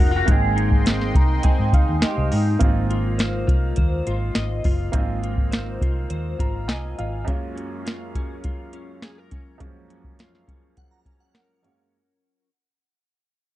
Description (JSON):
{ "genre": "indie pop, bedroom pop", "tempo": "103 BPM", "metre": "4/4", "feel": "straight", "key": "Ab mixolydian", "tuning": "A4 = 440 Hz", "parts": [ { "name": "clean lap steel guitar", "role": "melody", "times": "0.0-0.8 s", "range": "Gb4 to Ab4", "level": "-26 LUFS", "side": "equal", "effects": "analog chorus, tape echo, plate reverb" }, { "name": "clear upright piano", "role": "accompaniment", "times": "0.0-12.0 s", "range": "Gb2 to Bb5", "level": "-31 LUFS", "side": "right 5 dB", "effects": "plate reverb" }, { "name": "direct-recorded clean electric guitar", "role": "accompaniment", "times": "0.0-12.5 s", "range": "Gb3 to Eb5", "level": "-30 LUFS", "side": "left 4 dB", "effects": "ensemble chorus, warbly pitch drift, plate reverb" }, { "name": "phased analog pad", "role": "sustained chords", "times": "0.0-2.6 s", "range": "Ab3 to C6", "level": "-30 LUFS", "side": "right 2 dB", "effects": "phaser, chorus" }, { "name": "vintage muted fingered electric bass", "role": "bass", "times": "0.0-7.2 s", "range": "F1 to Ab2", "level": "-24 LUFS", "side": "equal", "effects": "none" }, { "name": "soft vintage rhythm box", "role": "drums", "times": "0.3-11.8 s", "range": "hi-hat, kick drum, snare drum", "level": "-20 LUFS", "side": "equal", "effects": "vintage 12-bit sampler grit" }, { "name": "shimmering bell with halo", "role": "second line", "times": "10.8-11.9 s", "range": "Gb5 to Bb5", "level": "-69 LUFS", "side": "right 2 dB", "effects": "ensemble chorus" } ], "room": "little or no reverb", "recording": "dark, warm production", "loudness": "-19 LUFS", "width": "side -15 dB against mid", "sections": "0.0-2.6 A section; 2.6-11.9 B section", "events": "upright piano fill 0.9-2.6, 6.1-7.3; fade-out 2.6-11.9", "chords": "0.3 Abmaj7; 2.6 Ab6; 7.3 Gbmaj7" }